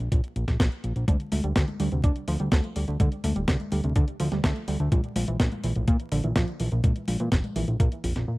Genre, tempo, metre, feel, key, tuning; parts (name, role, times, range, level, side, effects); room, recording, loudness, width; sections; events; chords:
italo disco; 125 BPM; 4/4; straight; A4 = 441 Hz
fat analog bass; bass; 0.0-8.3 s; D1 to Bb2; -27 LUFS; equal
clean 12-bit digital drum machine; drums; 0.0-8.3 s; congas, hi-hat, snare drum; -30 LUFS; left 1 dB
electronic kick drum; drums; 0.1-7.9 s; -23 LUFS; equal
warbly dusty pluck; arpeggios; 1.1-8.4 s; F2 to D4; -30 LUFS; right 1 dB; chorus, tape echo
digital ambience; dry, close 1970s-style studio recording, vinyl crackle; -23 LUFS; side -21 dB against mid
0.0-8.4 A section
0.0 Bb5; 1.1 N.C.; 4.9 Bb5